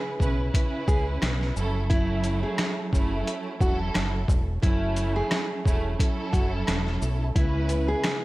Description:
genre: hip hop, boom-bap hip-hop.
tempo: 88 BPM.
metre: 4/4.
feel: swing 55% on 16ths.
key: unclear.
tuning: A4 = 440 Hz.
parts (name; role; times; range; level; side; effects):
nylon-string guitar; melody; 0.0-8.2 s; E4 to G#4; -32 LUFS; equal; high-pass filter, low-pass filter.
dark studio string section; accompaniment; 0.0-8.2 s; C#3 to B4; -30 LUFS; right 2 dB; cassette tape, high-pass filter, low-pass filter.
deep dub fingered electric bass; bass; 0.2-7.9 s; E1 to C#2; -28 LUFS; equal; none.
boom bap sampler-style drum kit; drums; 0.2-8.2 s; hi-hat, kick drum, rim click, shaker, snare drum; -25 LUFS; equal; none.
mellow tonewheel organ; sustained chords; 7.4-8.2 s; C#3 to E4; -37 LUFS; left 2 dB; none.
room: digital ambience.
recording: vinyl crackle.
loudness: -23 LUFS.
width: side -19 dB against mid.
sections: 0.0-8.2 A section.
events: none.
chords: 0.0 C#m7; 1.6 F#m7; 7.4 C#m7.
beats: 0.54 1.22 | 1.90 2.58 3.26 3.95 | 4.63 5.31 5.99 6.67 | 7.36 8.04.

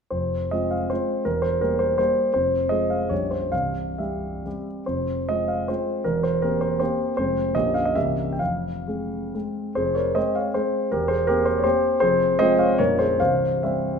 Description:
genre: classical, romantic triple-time dance for piano with dotted rhythms.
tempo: 121-175 BPM.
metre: 3/4.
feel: rubato.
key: F minor.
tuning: A4 = 444 Hz.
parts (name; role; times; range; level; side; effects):
warm concert grand piano; solo; 0.1-14.0 s; Bb0 to G5; -20 LUFS; equal; none.
room: wet recital hall reverb, RT60 1.6 s.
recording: minimal, uncompressed stereo recording.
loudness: -20 LUFS.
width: side -6 dB against mid.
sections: 0.1-9.8 A section; 9.8-14.0 A section.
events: none.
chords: 0.1 Fm; 1.3 C7/E; 2.3 Fm; 3.1 Gdim/Bb; 3.5 C; 4.9 Fm; 6.1 C7/E; 7.2 Fm; 7.5 Gdim/Bb; 8.0 C7b9; 8.4 Fm; 10.9 C7/E; 12.0 Fm; 12.8 Gdim/Bb; 13.2 C.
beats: | 0.11 0.51 0.90 | 1.26 1.62 1.99 | 2.34 2.71 3.11 | 3.53 4.00 4.46 | 4.87 5.29 5.69 | 6.06 6.43 6.80 | 7.17 7.55 7.96 | 8.40 8.87 9.35 | 9.76 10.17 10.55 | 10.92 11.28 11.64 | 12.01 12.39 12.79 | 13.19 13.63.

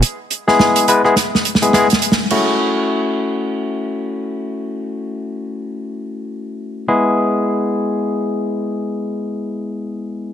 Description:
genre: glitch hop.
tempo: free time.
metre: none.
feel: none.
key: F# minor.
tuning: A4 = 440 Hz.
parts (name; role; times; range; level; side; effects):
warm soul drum kit; drums; 0.0-2.4 s; crash cymbal, hi-hat, rim click, snare drum; -17 LUFS; right 2 dB; none.
barky tine electric piano; stabs; 0.5-10.3 s; G#3 to B4; -17 LUFS; left 2 dB; vintage 12-bit sampler grit, tape echo.
room: moderate lush hall reverb, RT60 1.8 s.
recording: none.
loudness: -15 LUFS.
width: side -9 dB against mid.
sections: 0.0-2.3 A section; 2.3-10.3 B section.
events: drum fill 1.2-2.3; band accent 2.1.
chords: 0.0 E; 2.3 F#m7; 6.9 E.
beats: free time.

